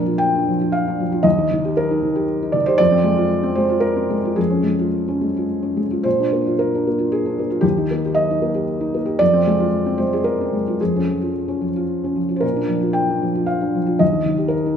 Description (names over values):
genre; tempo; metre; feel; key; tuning
neoclassical minimalist piano; 107-118 BPM; 3/4; rubato; Eb major; A4 = 444 Hz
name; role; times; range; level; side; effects
felt-muted upright piano; solo; 0.0-14.8 s; Eb2 to G5; -17 LUFS; equal; none
room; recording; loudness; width
moderate scoring stage reverb, RT60 1.5 s; recorded in a church or concert hall; -17 LUFS; side -8 dB against mid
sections
0.0-6.1 A section; 6.1-14.8 A section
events
none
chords
0.0 Bb; 1.2 Eb; 2.8 Fm; 4.4 Db/F; 6.1 Bb; 7.6 Eb; 9.2 Fm; 10.8 Db/F; 12.4 Bb; 14.0 Eb